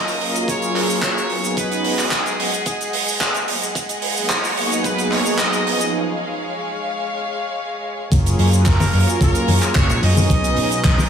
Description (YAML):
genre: nu-disco, nu disco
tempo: 110 BPM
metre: 4/4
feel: straight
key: F# major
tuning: A4 = 440 Hz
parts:
  - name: brilliant trumpet section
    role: melody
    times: 0.0-11.1 s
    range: G#4 to D#5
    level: -25 LUFS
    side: equal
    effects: digital delay
  - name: rich studio violin section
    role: sustained chords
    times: 0.0-11.1 s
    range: G#3 to F#5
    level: -26 LUFS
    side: left 1 dB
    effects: sidechain pumping
  - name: damped 70s drum kit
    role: drums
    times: 0.1-11.1 s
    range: cabasa, handclaps, hi-hat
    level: -22 LUFS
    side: right 2 dB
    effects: none
  - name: warm analog pad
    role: accompaniment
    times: 0.2-10.8 s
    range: E#3 to G#4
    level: -24 LUFS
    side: right 1 dB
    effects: chorus, sidechain pumping, digital delay
  - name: electronic kick drum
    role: drums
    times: 0.5-11.0 s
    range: none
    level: -19 LUFS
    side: equal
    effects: high-pass filter on kick
  - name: fingered electric bass with an envelope filter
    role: bass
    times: 8.1-11.1 s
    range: F#1 to B2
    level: -17 LUFS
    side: equal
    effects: none
  - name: congas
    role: percussion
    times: 8.8-11.1 s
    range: none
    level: -23 LUFS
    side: left 3 dB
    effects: none
room: light reverb, small room ambience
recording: studio reverb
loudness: -16 LUFS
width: side -8 dB against mid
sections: 0.0-8.1 A section; 8.1-11.1 B section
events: build-up 0.0-8.1; break 5.9-8.1; drop 8.1-11.1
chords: 0.0 F#maj7; 1.6 B6; 3.5 G#m7; 5.9 C#; 8.1 F#maj7; 10.3 B6